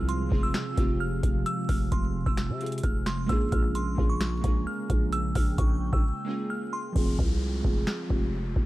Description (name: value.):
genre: hip hop, trap.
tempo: 131 BPM.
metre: 4/4.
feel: half-time.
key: F harmonic minor.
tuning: A4 = 442 Hz.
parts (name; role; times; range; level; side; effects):
glassy synth bell; melody; 0.0-6.9 s; C6 to F6; -35 LUFS; right 1 dB; chorus, tremolo.
glassy digital keys; accompaniment; 0.0-8.7 s; F3 to Ab4; -33 LUFS; right 1 dB; chorus, low-pass filter.
glassy FM pad; sustained chords; 0.0-6.9 s; C3 to G5; -36 LUFS; right 1 dB; ensemble chorus, built-in reverb.
growling 808-style bass; bass; 0.0-8.7 s; F1 to C3; -29 LUFS; equal; none.
booming analog drum machine; drums; 0.1-8.7 s; crash cymbal, finger snaps, hi-hat, kick drum, snare drum; -27 LUFS; equal; none.
downlifter; sound effects; 7.0-8.7 s; none; -42 LUFS; left 2 dB; none.
room: little or no reverb.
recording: dark, warm production, vinyl crackle.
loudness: -25 LUFS.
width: side -17 dB against mid.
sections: 0.0-7.0 A section; 7.0-8.7 B section.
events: break 6.0-7.0; hi-hats muted 7.0-8.7.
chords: 0.0 Fm; 3.3 Bbm7; 7.0 Fm.